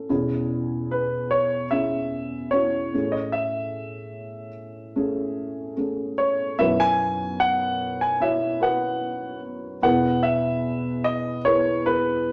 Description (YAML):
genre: pop ballad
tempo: 74 BPM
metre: 4/4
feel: straight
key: E major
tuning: A4 = 442 Hz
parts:
  - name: felt-muted upright piano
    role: accompaniment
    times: 0.0-12.3 s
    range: B1 to C#5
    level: -28 LUFS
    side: equal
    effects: none
  - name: warm grand piano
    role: melody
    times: 0.9-12.3 s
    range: B4 to G#5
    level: -26 LUFS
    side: equal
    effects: none
room: wet studio reverb, RT60 0.9 s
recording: none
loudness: -24 LUFS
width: mono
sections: 0.0-6.6 A section; 6.6-12.3 B section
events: none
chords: 0.1 E6; 2.9 Amaj7; 6.6 Bsus4; 9.8 E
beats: | 0.10 0.91 1.72 2.53 | 3.34 4.15 4.96 5.77 | 6.58 7.40 8.21 9.02 | 9.83 10.64 11.45 12.26